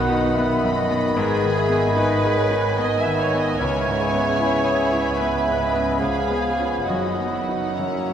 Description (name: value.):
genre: classical, romantic movement for piano and orchestra.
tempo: 74 BPM.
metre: 3/4.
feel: rubato.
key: B major.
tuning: A4 = 440 Hz.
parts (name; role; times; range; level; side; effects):
clear concert grand piano; melody; 0.0-8.1 s; B1 to G#4; -26 LUFS; left 2 dB; none.
warm studio violin section; melody; 0.0-8.1 s; A#5 to B5; -37 LUFS; left 2 dB; none.
dark clarinet; second line; 0.0-8.1 s; G#4 to F#5; -30 LUFS; left 1 dB; none.
hollow concert flute; second line; 0.0-8.1 s; A#5 to B5; -34 LUFS; left 2 dB; none.
rich studio violin section; second line; 0.0-8.1 s; D#5 to G#5; -33 LUFS; left 3 dB; none.
warm oboe; second line; 0.0-8.1 s; D#5 to G#5; -32 LUFS; right 1 dB; none.
mellow bassoon; accompaniment; 0.0-8.1 s; D#3 to F#3; -29 LUFS; right 2 dB; none.
rich studio viola section; accompaniment; 0.0-8.1 s; B3 to E5; -27 LUFS; right 1 dB; none.
dark French horn section; sustained chords; 0.0-8.1 s; B3 to E5; -30 LUFS; left 4 dB; none.
warm trombone section; sustained chords; 0.0-8.1 s; C#3 to B3; -28 LUFS; right 2 dB; none.
dark trumpet section; stabs; 0.0-8.1 s; D#5 to F#5; -28 LUFS; right 2 dB; none.
rich studio cello section; bass; 0.0-8.1 s; F#2 to C#3; -30 LUFS; right 2 dB; none.
warm studio double bass section; bass; 0.0-8.1 s; F#1 to C#2; -31 LUFS; right 2 dB; none.
room: wet concert hall reverb, RT60 2.5 s.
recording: none.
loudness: -18 LUFS.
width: side -9 dB against mid.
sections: 0.0-8.1 A section.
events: none.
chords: 0.0 B; 1.2 G#m; 3.6 C#m7; 6.0 C#7; 6.9 B/F#.